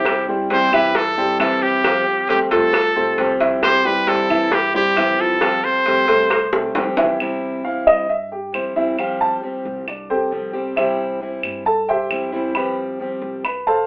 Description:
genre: latin, Cuban son and guajira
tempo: 134 BPM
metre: 4/4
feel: straight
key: C major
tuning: A4 = 442 Hz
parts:
  - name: brilliant trumpet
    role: melody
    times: 0.0-6.5 s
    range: G4 to C5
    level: -17 LUFS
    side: equal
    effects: none
  - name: nylon-string guitar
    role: second line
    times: 0.0-6.5 s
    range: C4 to A4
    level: -26 LUFS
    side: equal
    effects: none
  - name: fingerpicked steel-string acoustic guitar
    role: accompaniment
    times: 0.0-13.5 s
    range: C3 to G4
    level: -23 LUFS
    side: equal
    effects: none
  - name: warm concert grand piano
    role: arpeggios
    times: 0.0-13.9 s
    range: E3 to B5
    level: -20 LUFS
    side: equal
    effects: none
  - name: upright bass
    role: bass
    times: 0.0-13.9 s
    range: B1 to G2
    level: -39 LUFS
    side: equal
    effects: none
  - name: claves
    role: percussion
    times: 0.1-13.7 s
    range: none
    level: -26 LUFS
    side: right 1 dB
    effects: none
  - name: cowbell and bongos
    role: percussion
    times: 0.1-7.2 s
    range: none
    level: -23 LUFS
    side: equal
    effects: none
room: wet small room ambience, RT60 0.5 s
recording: band playing live in one room, telephone sound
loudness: -16 LUFS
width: side -26 dB against mid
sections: 0.0-7.2 A section; 7.2-13.9 B section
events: drum fill 6.5-7.2; grand piano solo 7.2-13.9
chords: 0.1 C; 1.8 Fadd9; 3.6 C; 5.4 Fadd9; 7.2 C; 9.0 Fadd9; 10.8 C; 12.6 Fadd9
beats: | 0.06 0.51 0.95 1.40 | 1.84 2.29 2.73 3.18 | 3.63 4.07 4.52 4.97 | 5.41 5.86 6.31 6.75 | 7.20 7.65 8.09 8.54 | 8.99 9.43 9.88 10.32 | 10.77 11.22 11.66 12.11 | 12.56 13.00 13.45

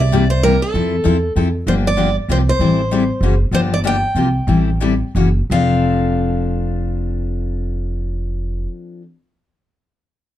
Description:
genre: acoustic string swing (jazz manouche)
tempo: 165-194 BPM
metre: 3/4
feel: swing 60% on 8ths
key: F major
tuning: A4 = 439 Hz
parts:
  - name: picked steel-string acoustic guitar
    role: melody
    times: 0.0-8.7 s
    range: A4 to G5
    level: -21 LUFS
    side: right 1 dB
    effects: plate reverb
  - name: upright bass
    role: bass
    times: 0.0-8.7 s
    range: F1 to F2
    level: -18 LUFS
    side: right 1 dB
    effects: none
  - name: picked steel-string acoustic guitar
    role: accompaniment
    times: 0.1-9.0 s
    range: C3 to A4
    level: -19 LUFS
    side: left 4 dB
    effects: none
room: moderate studio ambience, RT60 0.5 s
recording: dark, warm production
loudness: -15 LUFS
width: side -12 dB against mid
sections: 0.0-1.7 A section; 1.7-5.5 B section; 5.5-7.7 C section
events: slowing down 3.5-5.5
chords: 0.0 C7; 0.7 Fmaj7; 1.7 Gm7; 2.3 C7sus4; 2.6 Am7; 3.2 Gb7; 3.5 Gm7; 4.2 C7sus4; 4.5 Am7; 5.1 Gb7; 5.5 F6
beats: 0.12 0.43 | 0.74 1.05 1.36 | 1.67 1.98 2.29 | 2.60 2.91 3.22 | 3.53 3.84 4.15 | 4.47 4.80 5.15 | 5.50 5.87 6.23 | 6.60 6.96 7.32

